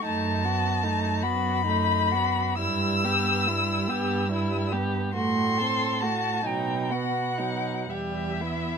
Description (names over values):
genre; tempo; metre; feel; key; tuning
classical, slow romantic movement for string quartet; 39-52 BPM (dotted quarters); 6/8; rubato; E minor; A4 = 443 Hz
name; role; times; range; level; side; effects
muted violin; melody; 0.0-8.8 s; E5 to E6; -27 LUFS; left 3 dB; none
muted violin; second line; 0.0-8.8 s; D#4 to A4; -31 LUFS; left 3 dB; none
muted viola; accompaniment; 0.0-8.8 s; F#3 to C4; -31 LUFS; right 4 dB; none
muted cello; bass; 0.1-8.8 s; E2 to B2; -29 LUFS; right 3 dB; none
room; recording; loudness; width
light reverb; close, detailed microphones; -23 LUFS; side -6 dB against mid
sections
0.0-8.8 A section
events
none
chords
0.1 B7/F#; 2.6 Em/G; 5.2 F#dim/A; 6.5 B; 7.9 Em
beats
| 0.06 1.24 | 2.59 3.88 | 5.16 6.45 | 7.90